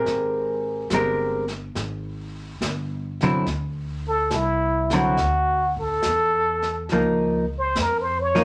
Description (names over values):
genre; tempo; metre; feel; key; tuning
jazz; 70 BPM; 4/4; swing 68% on 8ths; unclear; A4 = 440 Hz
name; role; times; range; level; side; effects
trumpet with plunger mute; melody; 0.0-8.4 s; E4 to Db5; -24 LUFS; equal; none
hollow-body jazz guitar; accompaniment; 0.0-8.4 s; D3 to Bb4; -24 LUFS; equal; none
upright bass; bass; 0.0-8.4 s; G1 to F2; -32 LUFS; equal; none
jazz brush drum kit; drums; 0.1-8.4 s; brushed snare drum, hi-hat, kick drum, snare drum; -34 LUFS; equal; none
room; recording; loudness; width
wet studio reverb, RT60 0.5 s; none; -23 LUFS; mono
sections
0.0-8.4 A section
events
muted trumpet solo 0.0-8.4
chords
0.1 Abmaj9; 3.5 D9; 6.9 Db69